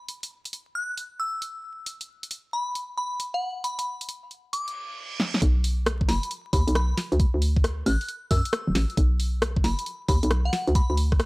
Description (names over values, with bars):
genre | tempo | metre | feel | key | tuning
UK garage, two-step garage | 135 BPM | 4/4 | swing 66% on 16ths | unclear | A4 = 440 Hz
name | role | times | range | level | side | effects
punchy analog drum machine | drums | 0.1-11.3 s | hi-hat, rim click, snare drum | -29 LUFS | equal | overdrive
glassy synth bell | melody | 0.8-10.9 s | F#5 to F#6 | -31 LUFS | left 1 dB | chorus
reverse cymbal | sound effects | 4.7-5.4 s | none | -35 LUFS | right 5 dB | none
hollow knocking FM bass | bass | 5.4-11.3 s | D1 to F#2 | -23 LUFS | equal | sidechain pumping
electronic kick drum | drums | 5.4-11.2 s | none | -23 LUFS | equal | none
room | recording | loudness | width
digital ambience | dry, gritty hardware recording, vinyl crackle | -23 LUFS | side -24 dB against mid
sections
0.0-5.4 A section; 5.4-11.3 B section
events
filter sweep on drum 0.0-5.4; reverse cymbal 4.7-5.4; drum fill 5.2; drop 5.4-11.3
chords
0.0 N.C.; 7.0 Dsus2; 9.0 N.C.